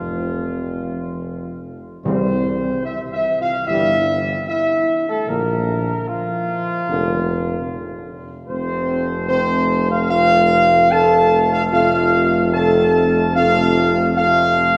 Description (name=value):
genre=classical, ceremonial fanfare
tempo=74 BPM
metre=4/4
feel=straight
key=F major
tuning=A4 = 436 Hz
part: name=dark trumpet section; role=melody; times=0.0-14.8 s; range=F4 to A5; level=-20 LUFS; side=equal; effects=none
part: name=dark French horn section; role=sustained chords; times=0.0-14.8 s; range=F3 to A4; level=-25 LUFS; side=equal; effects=none
part: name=warm trombone section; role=sustained chords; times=0.0-14.8 s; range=F2 to Bb3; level=-29 LUFS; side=equal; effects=none
part: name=mellow tuba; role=bass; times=0.0-14.8 s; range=F1 to C2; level=-25 LUFS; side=equal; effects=none
part: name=timpani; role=percussion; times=2.1-3.2 s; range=C3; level=-30 LUFS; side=equal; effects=none
room=wet cathedral reverb, RT60 5.0 s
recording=none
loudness=-18 LUFS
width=mono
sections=0.0-14.8 A section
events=none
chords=0.0 N.C.; 2.1 C; 5.3 Bb; 8.5 F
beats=0.43 1.24 | 2.05 2.86 3.68 4.49 | 5.28 6.08 6.89 7.69 | 8.50 9.30 10.10 10.92 | 11.73 12.54 13.35 14.16